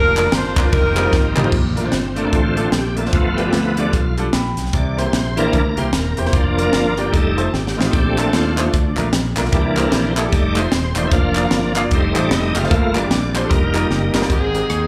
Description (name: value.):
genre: uptempo gospel.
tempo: 150 BPM.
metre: 4/4.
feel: swing 61% on 8ths.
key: Bb major.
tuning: A4 = 441 Hz.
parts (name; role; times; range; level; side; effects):
clear saxophone section; melody; 0.0-1.5, 14.3-14.9 s; C4 to C5; -21 LUFS; equal; slapback echo.
bright tonewheel organ; sustained chords; 0.0-14.9 s; D3 to G5; -23 LUFS; equal; slow rotary speaker, chorus vibrato.
modern bright fingered electric bass; bass; 0.0-14.9 s; Eb1 to Eb2; -24 LUFS; equal; none.
clear baby grand piano; accompaniment; 0.2-14.9 s; G2 to B5; -26 LUFS; equal; slapback echo.
crisp fusion drum kit; drums; 0.2-14.8 s; crash cymbal, hi-hat, kick drum, ride cymbal, rim click, snare drum, toms; -22 LUFS; equal; none.
group handclap; percussion; 0.2-1.4, 8.2-14.2 s; none; -29 LUFS; equal; none.
room: moderate lush hall reverb, RT60 1.7 s, studio ambience.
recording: live gig heard through the venue's PA, club reverb.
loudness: -17 LUFS.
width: mono.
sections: 0.0-1.5 A section; 1.5-14.3 B section.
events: drum fill 1.1-1.5, 7.5-7.9, 13.9-14.3; tonewheel organ solo 1.5-14.3.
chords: 0.0 Bb/F; 0.7 F9sus4; 1.5 Bbmaj7; 3.1 G7; 4.7 C7; 6.3 Bb/F; 7.1 F7; 7.9 Bbmaj7; 9.5 C7; 10.3 F7; 11.1 Bb/F; 11.9 F7; 12.7 Gm7; 13.5 F9sus4; 14.3 Abmaj9.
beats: 0.33 0.72 1.12 | 1.52 1.93 2.33 2.73 | 3.13 3.53 3.93 4.33 | 4.73 5.13 5.53 5.93 | 6.33 6.73 7.13 7.53 | 7.93 8.33 8.73 9.13 | 9.53 9.93 10.32 10.72 | 11.12 11.52 11.92 12.31 | 12.71 13.11 13.51 13.90 | 14.30 14.70.